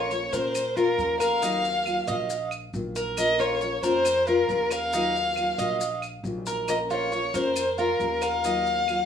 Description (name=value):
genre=latin, Cuban son and guajira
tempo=137 BPM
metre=4/4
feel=straight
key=Bb minor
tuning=A4 = 443 Hz
part: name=dark violin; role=melody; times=0.0-9.1 s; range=Bb4 to F5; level=-25 LUFS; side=left 1 dB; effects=none
part: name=nylon-string guitar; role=second line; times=0.0-9.1 s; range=F4 to Bb4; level=-30 LUFS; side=left 6 dB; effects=none
part: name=nylon-string guitar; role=accompaniment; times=0.0-9.1 s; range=Eb3 to F4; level=-33 LUFS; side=left 3 dB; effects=none
part: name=Cuban tres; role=arpeggios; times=0.0-8.7 s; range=Eb4 to Eb5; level=-30 LUFS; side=right 4 dB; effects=none
part: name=upright bass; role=bass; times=0.0-9.0 s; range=Bb1 to Bb2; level=-39 LUFS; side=right 1 dB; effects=none
part: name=maracas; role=percussion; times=0.1-9.1 s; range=none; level=-37 LUFS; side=left 9 dB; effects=none
part: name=claves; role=percussion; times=0.5-9.1 s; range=none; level=-38 LUFS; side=right 6 dB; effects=none
room=moderate studio reverb, RT60 0.5 s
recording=rough home demo mix, studio reverb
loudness=-23 LUFS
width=side -8 dB against mid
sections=0.0-9.1 A section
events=none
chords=0.0 Bbm; 1.4 Ebmadd9; 3.2 Bbm; 4.9 Ebmadd9; 6.7 Bbm; 8.4 Ebmadd9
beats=0.11 0.55 0.98 | 1.42 1.86 2.30 2.73 | 3.17 3.61 4.05 4.49 | 4.93 5.37 5.80 6.24 | 6.68 7.12 7.56 8.00 | 8.44 8.88